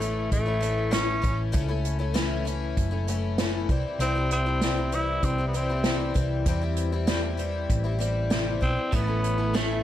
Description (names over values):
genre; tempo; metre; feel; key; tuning
folk rock and heartland rock; 98 BPM; 4/4; straight; unclear; A4 = 439 Hz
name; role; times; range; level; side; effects
raspy tenor saxophone; melody; 0.0-9.8 s; A3 to E4; -28 LUFS; equal; none
picked twelve-string acoustic guitar; accompaniment; 0.0-9.8 s; A2 to E4; -30 LUFS; left 5 dB; none
hollow-body short-scale picked electric bass; bass; 0.0-9.8 s; F#1 to E2; -28 LUFS; equal; none
unplugged drum kit; drums; 0.0-9.7 s; hi-hat, kick drum, snare drum; -28 LUFS; right 1 dB; none
electric guitar at the edge of break-up; riff; 8.9-9.8 s; A2 to A3; -31 LUFS; right 5 dB; ensemble chorus
room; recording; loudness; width
light reverb; none; -23 LUFS; side -12 dB against mid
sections
0.0-9.8 A section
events
none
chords
0.0 A; 3.7 C; 8.9 A